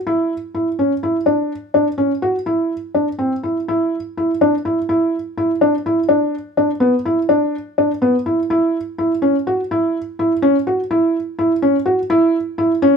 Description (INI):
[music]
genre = contemporary instrumental, contemporary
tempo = 250 BPM (eighths)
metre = 5/8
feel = straight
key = unclear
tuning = A4 = 441 Hz
[part]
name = felt-muted upright piano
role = solo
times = 0.1-13.0 s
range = B3 to F#4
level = -15 LUFS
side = equal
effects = none
[sound]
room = light reverb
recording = none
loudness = -15 LUFS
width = side -5 dB against mid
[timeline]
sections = 0.0-3.7 A section; 3.7-13.0 B section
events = none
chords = none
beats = | 0.07 0.30 0.55 0.78 1.02 | 1.26 1.50 1.74 1.98 2.22 | 2.46 2.70 2.94 3.18 3.43 | 3.68 3.92 4.17 4.41 4.65 | 4.89 5.13 5.37 5.61 5.85 | 6.09 6.33 6.57 6.81 7.05 | 7.29 7.53 7.77 8.01 8.26 | 8.50 8.74 8.98 9.22 9.46 | 9.70 9.94 10.18 10.41 10.65 | 10.89 11.13 11.37 11.61 11.85 | 12.09 12.34 12.58 12.82